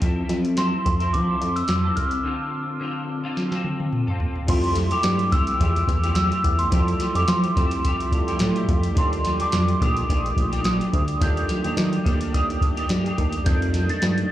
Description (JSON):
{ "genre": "indie pop, bedroom pop", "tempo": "107 BPM", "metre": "4/4", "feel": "swing 55% on 16ths", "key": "F major", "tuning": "A4 = 443 Hz", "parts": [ { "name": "electric guitar at the edge of break-up", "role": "accompaniment", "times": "0.0-14.3 s", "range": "F2 to A4", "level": "-29 LUFS", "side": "left 3 dB", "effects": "ensemble chorus, vibrato effect, plate reverb, slapback echo" }, { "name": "chorused synth bass", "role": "bass", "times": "0.0-14.2 s", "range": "Bb1 to F3", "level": "-25 LUFS", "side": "equal", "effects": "none" }, { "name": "soft vintage rhythm box", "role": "drums", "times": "0.0-14.3 s", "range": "crash cymbal, hi-hat, kick drum, snare drum, toms", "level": "-23 LUFS", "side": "equal", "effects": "none" }, { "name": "glockenspiel with rubber mallets", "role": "melody", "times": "0.6-14.3 s", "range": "C6 to A6", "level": "-26 LUFS", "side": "equal", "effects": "analog chorus, plate reverb, slapback echo, tape echo" }, { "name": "barky tine electric piano", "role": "accompaniment", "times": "4.5-14.3 s", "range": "G3 to A4", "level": "-32 LUFS", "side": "right 4 dB", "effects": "overdrive, cassette tape, plate reverb, slapback echo" } ], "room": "light reverb", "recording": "live gig heard through the venue's PA, club reverb", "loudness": "-20 LUFS", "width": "side -13 dB against mid", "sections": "0.0-4.5 A section; 4.5-14.3 B section", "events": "break 2.3-4.5; drum fill 3.4-4.5", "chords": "0.0 Fmaj7; 2.3 Dm7; 4.5 Fmaj9; 9.0 Ebmaj9#11; 13.5 F13" }